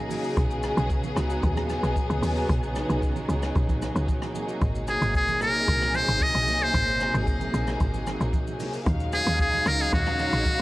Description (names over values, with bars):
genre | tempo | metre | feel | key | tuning
amapiano | 113 BPM | 4/4 | straight | unclear | A4 = 441 Hz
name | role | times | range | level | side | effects
warm studio string section | sustained chords | 0.0-10.6 s | B#2 to E#5 | -29 LUFS | left 1 dB | sidechain pumping, cassette tape
open jazz drum kit | drums | 0.1-10.6 s | hi-hat, kick drum, rim click, shaker | -29 LUFS | equal | cassette tape
congas | percussion | 0.1-10.6 s | none | -38 LUFS | right 7 dB | none
woody log drum bass | bass | 0.4-10.6 s | G#1 to D#2 | -27 LUFS | equal | none
trumpet with metal mute | melody | 4.9-10.6 s | F#4 to D#5 | -25 LUFS | equal | cassette tape, tape echo
room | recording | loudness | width
light reverb, small room ambience | home recording on cassette | -22 LUFS | side -18 dB against mid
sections
0.0-10.6 A section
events
none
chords
0.4 B69; 4.4 G#9; 8.9 D#m11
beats
| 0.37 0.90 1.43 1.96 | 2.49 3.02 3.56 4.09 | 4.62 5.15 5.68 6.21 | 6.74 7.27 7.80 8.33 | 8.87 9.40 9.93 10.46